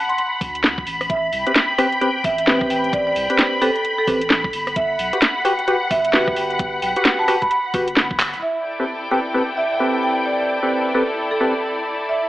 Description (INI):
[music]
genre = UK garage, two-step garage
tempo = 131 BPM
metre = 4/4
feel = swing 61% on 16ths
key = A dorian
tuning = A4 = 440 Hz
[part]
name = marimba with medium mallets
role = melody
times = 0.0-12.3 s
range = A4 to C6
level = -23 LUFS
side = right 1 dB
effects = none
[part]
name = soft string machine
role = sustained chords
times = 0.0-12.3 s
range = B5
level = -25 LUFS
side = equal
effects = ensemble chorus, vintage 12-bit sampler grit, sidechain pumping
[part]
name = rich studio string section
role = texture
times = 0.0-12.3 s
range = E4 to G5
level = -26 LUFS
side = left 1 dB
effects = sidechain pumping
[part]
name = garage drum kit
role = drums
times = 0.1-8.4 s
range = handclaps, hi-hat, rim click, snare drum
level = -19 LUFS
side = equal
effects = none
[part]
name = soft dub sub bass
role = bass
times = 0.4-8.4 s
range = D1 to D2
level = -37 LUFS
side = equal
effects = sidechain pumping
[part]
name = electronic kick drum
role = drums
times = 0.4-8.2 s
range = none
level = -27 LUFS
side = equal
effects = none
[part]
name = percussive organ stab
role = stabs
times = 1.5-11.5 s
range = C4 to B4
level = -22 LUFS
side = equal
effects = wide subtle chorus
[sound]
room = moderate digital room reverb, RT60 1.1 s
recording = AM radio sound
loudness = -17 LUFS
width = side -15 dB against mid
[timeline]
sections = 0.0-8.4 A section; 8.4-12.3 B section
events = drum fill 8.2; band accent 8.2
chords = 0.0 D; 0.9 Am9; 4.5 Gmaj7; 8.4 Am9